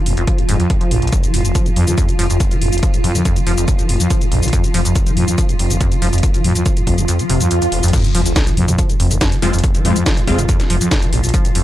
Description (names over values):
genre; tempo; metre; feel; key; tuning
driving peak-time techno; 141 BPM; 4/4; straight; F minor; A4 = 440 Hz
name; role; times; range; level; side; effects
acid bass, saw; riff; 0.0-11.6 s; F1 to F3; -21 LUFS; equal; lush chorus, cassette tape, sidechain pumping, analog delay
swarming drone; drone; 0.0-11.6 s; F3 to F4; -23 LUFS; equal; built-in reverb, sidechain pumping
growling FM bass; bass; 0.1-11.6 s; F1 to F2; -17 LUFS; equal; sidechain pumping
techno drum kit; drums; 0.1-11.6 s; crash cymbal, hi-hat, shaker, snare drum, toms; -22 LUFS; left 1 dB; none
electronic kick drum; drums; 0.3-11.4 s; none; -17 LUFS; equal; none
swell and sub drop; sound effects; 7.2-9.6 s; none; -23 LUFS; right 2 dB; none
rave stab; stabs; 9.4-10.4 s; Ab3 to F4; -21 LUFS; left 2 dB; chorus, built-in reverb, sidechain pumping, analog delay
room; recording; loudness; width
digital ambience; dry, gritty hardware recording; -13 LUFS; side -14 dB against mid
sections
0.0-7.9 A section; 7.9-11.6 B section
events
kick drops out 7.1-7.9; swell 7.2-7.9; drop 7.9-11.6; impact 7.9-9.6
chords
0.0 N.C.; 7.9 Fm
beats
0.27 0.70 | 1.12 1.55 1.98 2.40 | 2.83 3.25 3.68 4.10 | 4.53 4.96 5.38 5.81 | 6.23 6.66 7.08 7.51 | 7.93 8.36 8.79 9.21 | 9.64 10.06 10.49 10.91 | 11.34